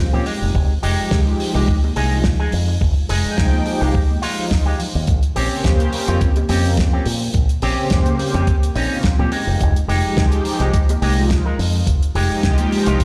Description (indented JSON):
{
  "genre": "nu-disco, nu disco",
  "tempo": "106 BPM",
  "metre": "4/4",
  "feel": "swing 54% on 16ths",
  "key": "unclear",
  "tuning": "A4 = 440 Hz",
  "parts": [
    { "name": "electric guitar with an envelope filter", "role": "riff", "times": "0.1-13.0 s", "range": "Ab3 to Bb4", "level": "-27 LUFS", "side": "equal", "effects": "lush chorus, slapback echo" },
    { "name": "fingered electric bass with an envelope filter", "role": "bass", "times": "0.1-13.0 s", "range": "F1 to Bb2", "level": "-22 LUFS", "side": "equal", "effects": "none" },
    { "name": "congas and bongos", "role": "percussion", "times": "0.1-12.8 s", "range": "none", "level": "-33 LUFS", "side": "equal", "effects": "none" },
    { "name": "damped 70s drum kit", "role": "drums", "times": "0.3-13.0 s", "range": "hi-hat, rim click, snare drum", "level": "-29 LUFS", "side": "equal", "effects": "none" },
    { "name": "electronic kick drum", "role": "drums", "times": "0.5-13.0 s", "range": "none", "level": "-19 LUFS", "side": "equal", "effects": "none" },
    { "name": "warm analog pad", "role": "accompaniment", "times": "1.0-12.9 s", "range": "Db3 to G5", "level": "-26 LUFS", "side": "equal", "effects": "chorus, sidechain pumping, slapback echo" }
  ],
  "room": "light reverb, small room ambience",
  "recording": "played on a big sound system in a bare room, stone room reverb",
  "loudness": "-18 LUFS",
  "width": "mono",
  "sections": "0.0-13.0 A section",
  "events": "filter sweep on analog synth pad 0.0-13.0",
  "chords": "0.3 Fm9; 5.1 Bbm69; 9.3 Fm9",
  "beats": "| 0.55 1.11 1.68 2.25 | 2.81 3.38 3.94 4.51 | 5.08 5.64 6.21 6.78 | 7.34 7.91 8.47 9.04 | 9.61 10.17 10.74 11.30 | 11.87 12.44 13.00"
}